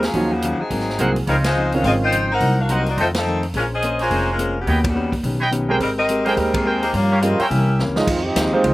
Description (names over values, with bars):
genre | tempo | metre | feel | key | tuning
jazz, big band swing | 212 BPM | 4/4 | swing 60% on 8ths | Ab major | A4 = 441 Hz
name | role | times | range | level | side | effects
warm saxophone section | melody | 0.0-7.8 s | Db3 to G5 | -21 LUFS | left 1 dB | none
hollow-body jazz guitar | accompaniment | 0.0-8.7 s | F2 to C5 | -26 LUFS | left 2 dB | slapback echo
upright bass | bass | 0.0-8.7 s | F1 to G2 | -22 LUFS | equal | none
swinging big-band drum kit | drums | 0.0-8.7 s | crash cymbal, hi-hat, kick drum, ride cymbal, snare drum | -27 LUFS | equal | none
clear concert grand piano | accompaniment | 0.1-2.1, 5.7-8.7 s | Eb3 to Eb5 | -21 LUFS | right 2 dB | none
clear trumpet section | stabs | 1.0-7.5 s | G4 to Ab5 | -22 LUFS | right 2 dB | none
clear trombone section | second line | 8.0-8.7 s | E3 to G4 | -22 LUFS | right 2 dB | none
room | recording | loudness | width
little or no reverb | recorded outdoors, with no room sound | -17 LUFS | side -18 dB against mid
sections
0.0-8.1 A section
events
band accent 1.4, 3.1, 4.8, 6.5; drum fill 7.8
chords
0.1 Ebm9; 0.7 Ab9; 1.3 Dbmaj9; 2.4 Cm7b5; 3.0 F7; 3.5 Bbm9; 4.7 Eb7alt; 5.8 Abmaj9; 6.9 Gm7b5; 7.5 C7b9; 8.1 Fm7